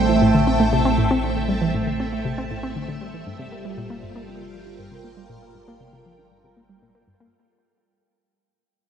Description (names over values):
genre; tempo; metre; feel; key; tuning
ambient, sequencer-driven space music; 118 BPM; 4/4; straight; unclear; A4 = 440 Hz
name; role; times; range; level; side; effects
string machine, full ensemble; sustained chords; 0.0-7.3 s; G3 to A5; -24 LUFS; right 2 dB; phaser, ensemble chorus
analog pluck; riff; 0.0-7.3 s; G2 to C4; -24 LUFS; left 1 dB; chorus, analog delay
warm sub bass; bass; 0.0-7.3 s; G1 to A1; -28 LUFS; equal; none
bubbling stepped-filter texture; texture; 0.0-7.3 s; G5; -32 LUFS; right 8 dB; chorus, built-in reverb
room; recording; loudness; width
moderate plate reverb, RT60 3.6 s; dark, warm production; -18 LUFS; side -8 dB against mid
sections
0.0-7.3 A section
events
fade-out on sub bass 0.0-7.3; fade-out 0.0-7.3; filter sweep on synth arpeggio sound 0.0-7.3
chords
0.0 Am7; 3.3 Gm7